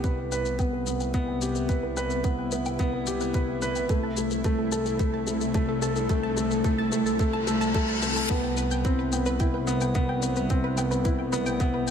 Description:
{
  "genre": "piano and strings electronica",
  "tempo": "109 BPM",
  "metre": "4/4",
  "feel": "straight",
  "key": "C major",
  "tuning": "A4 = 440 Hz",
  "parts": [
    { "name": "lush unison pad", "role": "sustained chords", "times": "0.0-11.9 s", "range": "C3 to B4", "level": "-33 LUFS", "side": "equal", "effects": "chorus" },
    { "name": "wide unison pluck", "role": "arpeggios", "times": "0.0-11.9 s", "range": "A4 to A5", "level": "-35 LUFS", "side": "equal", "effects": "sidechain pumping, ping-pong delay" },
    { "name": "warm baby grand piano", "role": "riff", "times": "0.0-11.9 s", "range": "A3 to B4", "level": "-27 LUFS", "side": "left 1 dB", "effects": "ping-pong delay" },
    { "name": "clear chamber double bass section", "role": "bass", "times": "0.0-11.9 s", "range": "C2", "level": "-32 LUFS", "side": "right 1 dB", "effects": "sidechain pumping" },
    { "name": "electronic kick drum", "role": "drums", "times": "0.0-11.7 s", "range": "none", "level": "-26 LUFS", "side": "right 1 dB", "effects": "none" },
    { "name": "shaker", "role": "drums", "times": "0.0-11.9 s", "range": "none", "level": "-37 LUFS", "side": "left 8 dB", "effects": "none" },
    { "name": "riser and reverse cymbal", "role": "sound effects", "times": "4.6-8.3 s", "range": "none", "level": "-36 LUFS", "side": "left 1 dB", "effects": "none" }
  ],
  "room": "moderate concert hall reverb, RT60 2.0 s",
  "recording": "none",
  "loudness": "-24 LUFS",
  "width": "side -8 dB against mid",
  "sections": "0.0-8.3 A section; 8.3-11.9 B section",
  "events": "build-up 0.0-8.3; filter sweep on synth arpeggio sound 0.0-8.3; riser 4.6-8.3; reverse cymbal 7.2-8.3; drop 8.3-11.9",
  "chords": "0.0 Cmaj7; 3.9 Am/C; 8.3 Cmaj7"
}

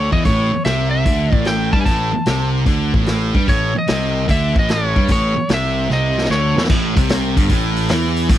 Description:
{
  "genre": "blues rock power trio and southern rock",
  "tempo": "149 BPM",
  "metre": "4/4",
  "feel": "swing 67% on 8ths",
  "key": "unclear",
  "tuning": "A4 = 442 Hz",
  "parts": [
    { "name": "lightly driven lead guitar", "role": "melody", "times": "0.0-6.6 s", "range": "C#5 to A5", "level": "-21 LUFS", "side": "equal", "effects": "none" },
    { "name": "thick fuzz guitar", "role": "riff", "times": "0.0-8.4 s", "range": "G2 to G3", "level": "-20 LUFS", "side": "right 1 dB", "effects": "distortion" },
    { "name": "fuzz picked electric bass", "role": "bass", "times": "0.0-8.4 s", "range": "G1 to G2", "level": "-20 LUFS", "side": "equal", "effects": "overdrive" },
    { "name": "vintage drum kit", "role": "drums", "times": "0.1-8.4 s", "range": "crash cymbal, hi-hat, kick drum, snare drum", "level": "-18 LUFS", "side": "equal", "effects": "none" }
  ],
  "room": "small room reverb",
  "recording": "dry, close 1970s-style studio recording",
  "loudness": "-14 LUFS",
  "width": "side -12 dB against mid",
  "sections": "0.0-6.7 A section; 6.7-8.4 B section",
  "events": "drum fill 5.9-6.7",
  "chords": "0.0 A; 6.7 A5"
}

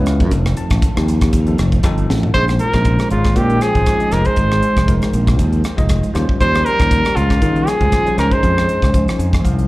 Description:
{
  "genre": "electric jazz fusion",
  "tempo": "118 BPM",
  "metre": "4/4",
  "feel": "swing 55% on 16ths",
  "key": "Bb dorian",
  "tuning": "A4 = 443 Hz",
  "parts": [
    { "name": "bell-like tine electric piano", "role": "accompaniment", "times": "0.0-9.7 s", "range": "F3 to A5", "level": "-23 LUFS", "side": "equal", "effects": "medium stereo tremolo, plate reverb, slapback echo" },
    { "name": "string machine, full ensemble", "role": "sustained chords", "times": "0.0-9.7 s", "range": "Db3 to C5", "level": "-29 LUFS", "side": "equal", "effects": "none" },
    { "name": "modern bright fingered electric bass", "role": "bass", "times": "0.0-9.7 s", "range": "F1 to Eb3", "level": "-16 LUFS", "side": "equal", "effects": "none" },
    { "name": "crisp fusion drum kit", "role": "drums", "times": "0.1-9.7 s", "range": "hi-hat, kick drum, rim click, snare drum, toms", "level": "-18 LUFS", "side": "equal", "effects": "none" },
    { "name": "warm trumpet", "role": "melody", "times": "2.3-9.1 s", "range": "F4 to C5", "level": "-18 LUFS", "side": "right 1 dB", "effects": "plate reverb, slapback echo" },
    { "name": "breathy tenor saxophone", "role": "second line", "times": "2.4-9.1 s", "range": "Db3 to Ab3", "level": "-26 LUFS", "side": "left 2 dB", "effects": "plate reverb" }
  ],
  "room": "little or no reverb",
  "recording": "live gig heard through the venue's PA, club reverb",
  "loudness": "-13 LUFS",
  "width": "side -19 dB against mid",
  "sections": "0.0-2.3 A section; 2.3-9.7 B section",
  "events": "drum fill 2.1; tine electric piano fill 8.9-9.7",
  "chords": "0.3 F7; 2.3 Bbm11; 4.1 Fm7; 6.1 Eb13; 8.2 Dbmaj9"
}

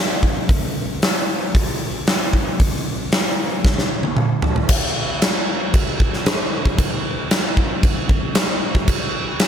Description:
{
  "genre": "rock",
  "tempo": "114 BPM",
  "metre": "4/4",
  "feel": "straight",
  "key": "none",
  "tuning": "none",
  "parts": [
    { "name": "huge arena drum kit", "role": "drums", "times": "0.2-9.5 s", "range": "crash cymbal, hi-hat, kick drum, snare drum, toms", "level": "-17 LUFS", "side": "equal", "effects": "none" }
  ],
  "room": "light reverb",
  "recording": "none",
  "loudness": "-17 LUFS",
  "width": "side -8 dB against mid",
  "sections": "0.0-4.7 A section; 4.7-9.5 B section",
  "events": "drum fill 3.7-4.7",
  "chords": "none"
}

